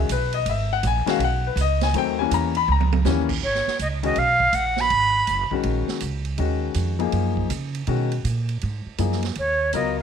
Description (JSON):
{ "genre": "modal jazz", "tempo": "162 BPM", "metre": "4/4", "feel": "swing 65% on 8ths", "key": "G# dorian from 3.4 s", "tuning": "A4 = 440 Hz", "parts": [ { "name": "clear baby grand piano", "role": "accompaniment", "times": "0.0-10.0 s", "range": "D#3 to B5", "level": "-24 LUFS", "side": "left 13 dB", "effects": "none" }, { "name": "upright bass", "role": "bass", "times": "0.0-10.0 s", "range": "F#1 to C#3", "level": "-24 LUFS", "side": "right 2 dB", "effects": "none" }, { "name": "swinging big-band drum kit", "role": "drums", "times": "0.1-9.8 s", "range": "crash cymbal, hi-hat, kick drum, ride cymbal, snare drum, toms", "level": "-32 LUFS", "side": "right 12 dB", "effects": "none" }, { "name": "breathy bright jazz flute", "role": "melody", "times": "3.4-5.5, 9.4-10.0 s", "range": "C#5 to B5", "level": "-20 LUFS", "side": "right 2 dB", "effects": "slapback echo" } ], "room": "studio reverb", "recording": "1960s-style stereo with parts hard left and right", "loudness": "-20 LUFS", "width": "side -7 dB against mid", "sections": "0.0-3.4 A section; 3.4-10.0 B section", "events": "drum fill 2.7-3.1", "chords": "0.0 C#9sus4; 1.9 D#7b9; 3.4 G#m11", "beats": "0.10 | 0.47 0.83 1.21 1.57 | 1.94 2.31 2.68 3.05 | 3.42 3.79 4.17 4.54 | 4.91 5.28 5.65 6.02 | 6.39 6.76 7.13 7.50 | 7.88 8.25 8.62 8.99 | 9.36 9.73" }